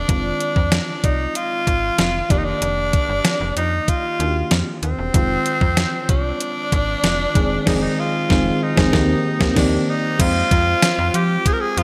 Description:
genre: 1980s-style pop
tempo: 95 BPM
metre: 4/4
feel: straight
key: F dorian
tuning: A4 = 438 Hz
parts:
  - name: raspy tenor saxophone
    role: melody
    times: 0.0-11.8 s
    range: C4 to Bb4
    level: -24 LUFS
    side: equal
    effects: delay
  - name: FM electric piano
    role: accompaniment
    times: 0.0-11.8 s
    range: Eb3 to G5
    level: -26 LUFS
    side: equal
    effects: chorus
  - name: slap-like FM bass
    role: bass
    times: 0.0-11.8 s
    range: E1 to F3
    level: -26 LUFS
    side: equal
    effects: none
  - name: clean 12-bit digital drum machine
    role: drums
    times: 0.1-11.8 s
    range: crash cymbal, hi-hat, kick drum, snare drum, tambourine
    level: -22 LUFS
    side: equal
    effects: gated reverb
room: wet plate reverb, RT60 2.4 s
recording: bright 1980s-style digital production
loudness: -19 LUFS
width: mono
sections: 0.0-10.2 A section; 10.2-11.8 B section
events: band accent 7.7-10.2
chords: 0.1 Fm7; 2.3 Ebmaj7/F; 5.1 Fm7; 8.9 Eb6; 10.2 Fmadd9

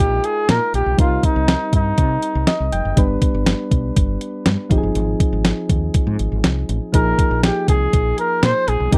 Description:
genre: 1980s-style pop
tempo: 121 BPM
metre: 4/4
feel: straight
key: unclear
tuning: A4 = 444 Hz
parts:
  - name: warm flugelhorn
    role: melody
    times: 0.0-2.7, 6.9-9.0 s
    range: Eb4 to C5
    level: -22 LUFS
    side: equal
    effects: slapback echo
  - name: soft electric-piano-like synth keys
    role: accompaniment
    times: 0.0-9.0 s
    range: F3 to G5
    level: -26 LUFS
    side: equal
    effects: chorus
  - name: woody fretless electric bass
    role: bass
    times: 0.0-9.0 s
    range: F1 to C3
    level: -23 LUFS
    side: equal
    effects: none
  - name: clean 12-bit digital drum machine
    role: drums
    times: 0.0-9.0 s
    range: hi-hat, kick drum, snare drum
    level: -19 LUFS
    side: equal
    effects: none
room: little or no reverb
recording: dry, close 1970s-style studio recording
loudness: -18 LUFS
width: mono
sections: 0.0-9.0 A section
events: synth keys fill 2.2-3.0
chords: 0.0 Bb7sus4; 1.0 Cm7; 3.0 G; 4.7 Fm7; 6.9 Bb7sus4

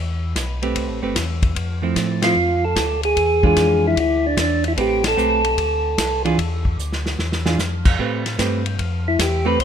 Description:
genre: soul jazz organ trio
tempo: 149 BPM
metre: 4/4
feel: swing 67% on 8ths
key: A minor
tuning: A4 = 440 Hz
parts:
  - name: tonewheel organ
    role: bass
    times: 0.0-9.6 s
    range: G1 to A2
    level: -24 LUFS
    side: left 1 dB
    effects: slow rotary speaker
  - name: warm soul drum kit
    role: drums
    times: 0.4-9.6 s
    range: crash cymbal, hi-hat, kick drum, ride cymbal, snare drum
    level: -23 LUFS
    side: left 1 dB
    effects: none
  - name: hollow-body jazz guitar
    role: accompaniment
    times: 0.6-9.6 s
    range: E3 to B4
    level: -23 LUFS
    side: right 4 dB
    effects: none
  - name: percussive tonewheel organ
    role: melody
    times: 2.2-6.2, 9.1-9.6 s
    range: D4 to C5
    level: -18 LUFS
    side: equal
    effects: slow rotary speaker
room: light reverb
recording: minimal, uncompressed stereo recording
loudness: -17 LUFS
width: side -8 dB against mid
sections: 0.0-8.0 A section; 8.0-9.6 B section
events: band accent 2.2, 5.0; drum fill 6.8-7.6; tonewheel organ solo 8.0-9.6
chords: 0.0 Am9; 1.6 Fmaj7; 3.2 E7b9; 4.8 Am9; 5.6 Dm7; 6.4 E7(no3); 8.0 Am9

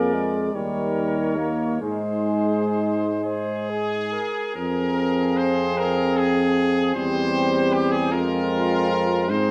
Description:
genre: classical, hymn-like piece for brass band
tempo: 40-52 BPM (dotted quarters)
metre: 6/8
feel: rubato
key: Ab major, F minor from 4.6 s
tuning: A4 = 445 Hz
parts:
  - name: warm trumpet section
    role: melody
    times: 0.0-9.5 s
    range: G4 to D5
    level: -29 LUFS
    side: equal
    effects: none
  - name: mellow flugelhorn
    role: second line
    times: 0.0-9.5 s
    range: Eb4 to C5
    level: -31 LUFS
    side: equal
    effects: none
  - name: clear euphonium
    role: accompaniment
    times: 0.0-9.5 s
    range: C4 to Ab4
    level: -28 LUFS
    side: equal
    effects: none
  - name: warm euphonium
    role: accompaniment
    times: 0.0-9.5 s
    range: F3 to Bb3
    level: -31 LUFS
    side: equal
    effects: none
  - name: warm tuba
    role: bass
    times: 0.0-9.5 s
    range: Eb2 to Ab2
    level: -28 LUFS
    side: equal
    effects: none
room: moderate scoring stage reverb, RT60 1.7 s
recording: none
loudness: -23 LUFS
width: mono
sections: 0.0-4.6 A section; 4.6-9.5 B section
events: none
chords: 0.0 Bb7/F; 0.5 Eb7; 1.8 Ab; 4.6 Fm; 7.0 C/E; 8.1 Fm

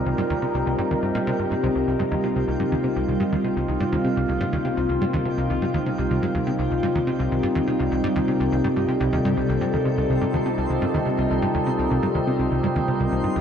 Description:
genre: ambient, sequencer-driven space music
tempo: 124 BPM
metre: 4/4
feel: straight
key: C dorian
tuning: A4 = 440 Hz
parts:
  - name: evolving wavetable pad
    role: sustained chords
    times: 0.0-13.4 s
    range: C3 to Bb4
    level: -24 LUFS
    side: right 1 dB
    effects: phaser, built-in reverb
  - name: concert harp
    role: arpeggios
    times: 0.0-13.4 s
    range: C3 to G4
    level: -26 LUFS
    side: left 3 dB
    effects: auto-pan, low-pass filter, ping-pong delay
  - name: plucky analog bass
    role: riff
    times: 0.0-13.4 s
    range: C2 to C3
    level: -25 LUFS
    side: right 1 dB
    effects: lush chorus, ping-pong delay
  - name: twinkling granular texture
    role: texture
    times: 0.0-13.4 s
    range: G4 to C5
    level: -41 LUFS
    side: right 2 dB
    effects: built-in reverb
room: wet plate reverb, RT60 3.6 s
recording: dreamy mix soaked in reverb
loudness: -20 LUFS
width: side -8 dB against mid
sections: 0.0-13.4 A section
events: fade-in on synth texture 0.0-13.4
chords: 0.0 Cm7

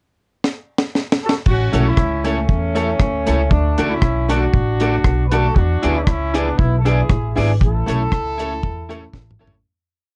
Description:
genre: ska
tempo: 117 BPM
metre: 4/4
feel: straight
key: A major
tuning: A4 = 444 Hz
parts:
  - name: deep reggae drum kit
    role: drums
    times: 0.4-9.6 s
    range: crash cymbal, hi-hat, kick drum, rim click, snare drum, toms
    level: -21 LUFS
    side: equal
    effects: none
  - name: mellow horn section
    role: melody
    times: 1.2-9.4 s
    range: A3 to B4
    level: -24 LUFS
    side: equal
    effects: none
  - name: upright bass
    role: bass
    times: 1.5-9.6 s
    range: G#1 to E2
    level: -22 LUFS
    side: equal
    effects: none
  - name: electric guitar at the edge of break-up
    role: accompaniment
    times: 1.7-9.5 s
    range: E4 to D5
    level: -26 LUFS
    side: equal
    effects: none
  - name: tack piano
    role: stabs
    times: 1.7-9.6 s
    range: A3 to A4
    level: -26 LUFS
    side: equal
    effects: none
room: little or no reverb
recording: cassette tape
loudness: -18 LUFS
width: mono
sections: 0.0-1.5 pickup bar; 1.5-9.6 A section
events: drum fill 0.4-1.5, 9.1-9.6; fade-out 7.6-9.6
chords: 0.0 N.C.; 1.5 A; 3.5 D; 5.6 E7; 7.6 A

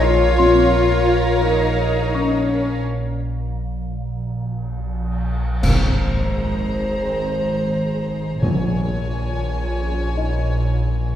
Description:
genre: cinematic, suspense film score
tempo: 86 BPM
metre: 4/4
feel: straight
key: Bb minor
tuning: A4 = 444 Hz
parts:
  - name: rich chamber violin section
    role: melody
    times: 0.0-11.2 s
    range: F5 to Bb5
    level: -34 LUFS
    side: left 2 dB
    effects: none
  - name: mellow clarinet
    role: second line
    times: 0.0-2.8 s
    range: Db5 to F5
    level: -31 LUFS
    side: left 1 dB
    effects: none
  - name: warm chamber violin section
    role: second line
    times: 0.0-11.2 s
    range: Bb4 to Db5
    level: -25 LUFS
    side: left 1 dB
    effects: none
  - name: dark chamber viola section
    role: accompaniment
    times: 0.0-11.2 s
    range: Db4 to Ab4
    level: -30 LUFS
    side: equal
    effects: none
  - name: dark French horn section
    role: sustained chords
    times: 0.0-10.1 s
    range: C4 to Db5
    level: -27 LUFS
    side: equal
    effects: none
  - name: clear chamber double bass section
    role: bass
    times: 0.0-11.2 s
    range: Ab1 to Bb1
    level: -24 LUFS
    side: equal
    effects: none
  - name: warm chamber cello section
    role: bass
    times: 0.0-11.2 s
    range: Ab2 to F4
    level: -24 LUFS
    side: left 1 dB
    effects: none
  - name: organ-like drone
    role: drone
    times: 0.0-11.2 s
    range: Ab1 to Bb1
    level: -25 LUFS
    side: equal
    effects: ensemble chorus, built-in reverb
  - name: small celesta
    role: texture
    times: 0.4-11.2 s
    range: C4 to Db6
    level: -25 LUFS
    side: left 3 dB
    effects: none
  - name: cymbal swell, clash cymbals and concert bass drum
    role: percussion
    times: 2.8-7.0 s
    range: none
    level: -22 LUFS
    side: equal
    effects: none
  - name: timpani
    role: percussion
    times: 8.4-9.4 s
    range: Bb2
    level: -22 LUFS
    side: equal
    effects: none
room: wet scoring stage reverb, RT60 1.9 s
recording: heard from further back in the room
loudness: -18 LUFS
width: side -10 dB against mid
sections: 0.0-5.6 A section; 5.6-11.2 B section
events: break 2.8-5.6; band accent 5.6-6.3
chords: 0.0 Bbm; 2.8 N.C.; 5.6 Abadd9; 8.4 Bbm7

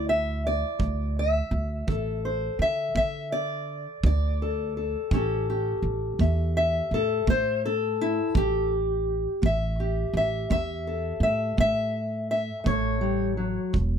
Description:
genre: acoustic country blues, solo or duo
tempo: 56 BPM (dotted quarters)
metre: 12/8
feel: straight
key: A mixolydian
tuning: A4 = 438 Hz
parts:
  - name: fingerpicked steel-string acoustic guitar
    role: melody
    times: 0.0-14.0 s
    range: D3 to E5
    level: -26 LUFS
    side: left 1 dB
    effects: none
  - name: upright bass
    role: bass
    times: 0.0-14.0 s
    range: E1 to D3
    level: -28 LUFS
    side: right 1 dB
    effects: none
  - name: kick drum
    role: drums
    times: 0.8-13.9 s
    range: none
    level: -30 LUFS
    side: right 2 dB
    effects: none
room: little or no reverb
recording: close, detailed microphones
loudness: -24 LUFS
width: side -8 dB against mid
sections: 0.0-14.0 A section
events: none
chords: 0.0 D5; 5.1 A7

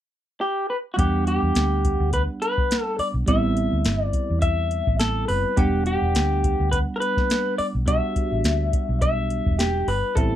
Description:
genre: straight-eighth soul blues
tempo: 105 BPM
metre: 4/4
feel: swing 55% on 16ths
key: E minor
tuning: A4 = 440 Hz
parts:
  - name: electric guitar through a small old amp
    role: melody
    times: 0.4-10.4 s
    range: F#4 to E5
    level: -24 LUFS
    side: left 2 dB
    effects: none
  - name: bell-like tine electric piano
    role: accompaniment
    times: 1.0-10.4 s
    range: G3 to F#5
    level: -27 LUFS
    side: right 3 dB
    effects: phaser
  - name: vintage muted fingered electric bass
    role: bass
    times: 1.0-10.4 s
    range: E1 to E2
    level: -24 LUFS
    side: equal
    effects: none
  - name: soft vintage rhythm box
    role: drums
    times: 1.0-10.3 s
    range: hi-hat, kick drum, snare drum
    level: -24 LUFS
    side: equal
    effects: overdrive
room: little or no reverb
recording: dry, close 1970s-style studio recording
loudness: -20 LUFS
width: side -11 dB against mid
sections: 1.0-10.4 A section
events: none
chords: 0.0 N.C.; 1.0 Em9; 3.3 Am9; 5.6 Em9

